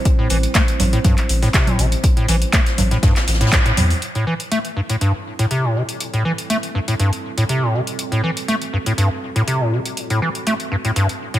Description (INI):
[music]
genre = acid house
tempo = 121 BPM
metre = 4/4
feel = straight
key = A dorian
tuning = A4 = 442 Hz
[part]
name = dark analog pad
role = sustained chords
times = 0.0-11.4 s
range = G3 to C5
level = -30 LUFS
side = right 3 dB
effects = wide subtle chorus, sidechain pumping
[part]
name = electro analog drum machine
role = drums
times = 0.1-11.4 s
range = congas, handclaps, hi-hat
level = -23 LUFS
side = right 1 dB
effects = none
[part]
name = electronic kick drum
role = drums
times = 0.1-3.6 s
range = none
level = -16 LUFS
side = equal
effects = none
[part]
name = jazz brush drum kit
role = drums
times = 0.1-4.0 s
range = hi-hat, snare drum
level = -28 LUFS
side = left 2 dB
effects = sidechain pumping on hats, high-pass filter on hats, high-pass filter on snare, high-pass filter on room
[part]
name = acid bass, square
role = riff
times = 0.2-11.4 s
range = G2 to A3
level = -19 LUFS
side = equal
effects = overdrive, lush chorus, ping-pong delay
[part]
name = saturated sub bass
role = bass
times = 0.3-3.9 s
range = A1 to E2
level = -18 LUFS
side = equal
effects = tube saturation, sidechain pumping
[sound]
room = light reverb, digital ambience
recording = none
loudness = -16 LUFS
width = side -13 dB against mid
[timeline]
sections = 0.0-4.0 A section; 4.0-11.4 B section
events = band accent 3.5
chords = 0.0 Am7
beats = | 0.05 0.55 1.05 1.54 | 2.04 2.53 3.03 3.52 | 4.02 4.52 5.01 5.51 | 6.00 6.50 7.00 7.49 | 7.99 8.48 8.98 9.47 | 9.97 10.47 10.96